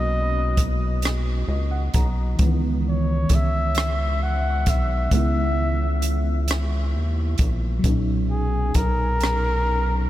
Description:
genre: slow six-eight R&B.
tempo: 44 BPM (dotted quarters).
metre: 6/8.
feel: straight.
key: C# dorian.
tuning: A4 = 441 Hz.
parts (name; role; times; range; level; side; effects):
breathy flugelhorn; melody; 0.0-10.1 s; G#4 to F#5; -28 LUFS; left 1 dB; analog delay.
mellow FM electric piano; accompaniment; 0.0-10.1 s; A#2 to A#5; -28 LUFS; equal; chorus, phaser.
rubbery square bass; bass; 0.0-10.1 s; A#1 to D#2; -22 LUFS; equal; none.
compact cocktail drum kit; drums; 0.6-9.4 s; hi-hat, kick drum, rim click; -24 LUFS; equal; none.
room: light reverb, studio ambience.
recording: none.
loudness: -20 LUFS.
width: side -14 dB against mid.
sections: 0.0-10.1 A section.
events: FM electric piano fill 1.0-2.4.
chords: 0.0 Bmaj7; 2.4 C#m9; 7.8 Bmaj7.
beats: 1.03 | 2.39 3.75 | 5.12 6.48 | 7.84 9.21.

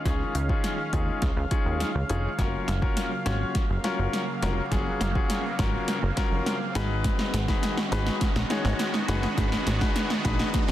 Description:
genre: dance-pop.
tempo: 103 BPM.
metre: 4/4.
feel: straight.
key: unclear.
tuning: A4 = 442 Hz.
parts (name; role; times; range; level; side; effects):
sweeping resonant pad; sustained chords; 0.0-10.7 s; Db3 to F5; -34 LUFS; right 1 dB; chorus, sidechain pumping.
riser; sound effects; 0.3-10.7 s; none; -38 LUFS; right 1 dB; none.
warm concert grand piano; accompaniment; 0.1-10.6 s; Db4 to Db5; -31 LUFS; left 4 dB; sidechain pumping.
plucky analog bass; bass; 0.1-10.7 s; F1 to Eb2; -27 LUFS; equal; sidechain pumping.
deep house drum kit; drums; 0.1-10.7 s; hi-hat, kick drum, snare drum; -27 LUFS; equal; overdrive.
room: light reverb, digital ambience.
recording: dense, heavily limited modern master.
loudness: -24 LUFS.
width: side -13 dB against mid.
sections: 0.0-10.7 A section.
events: build-up 0.0-10.7; drum fill 0.0-10.7.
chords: 0.0 Dbadd9; 2.4 Gbmaj7; 6.8 Abm7.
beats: | 0.06 0.64 1.22 1.80 | 2.39 2.97 3.55 4.13 | 4.72 5.30 5.88 6.46 | 7.05 7.63 8.21 8.79 | 9.38 9.96 10.54.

